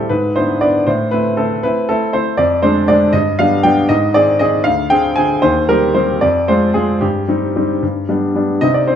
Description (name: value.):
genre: classical-period piano sonatina.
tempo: 73-81 BPM (dotted quarters).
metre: 6/8.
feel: rubato.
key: C minor.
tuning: A4 = 441 Hz.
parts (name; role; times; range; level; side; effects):
clear grand piano; solo; 0.0-9.0 s; D2 to Ab5; -12 LUFS; equal; none.
room: wet stone room reverb, RT60 1.2 s.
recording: none.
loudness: -12 LUFS.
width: side -9 dB against mid.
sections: 0.0-8.6 A section.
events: none.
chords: 0.1 E7/G#; 0.9 Am; 2.4 Dm7b5/F; 3.1 G; 3.9 Ab; 4.6 Dm7b5; 5.4 Cm/Eb; 6.2 Fm6; 7.0 Cm/G; 7.8 G.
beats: 0.10 | 0.87 1.63 | 2.38 3.13 | 3.89 4.64 | 5.42 6.21 | 7.01 7.82 | 8.63.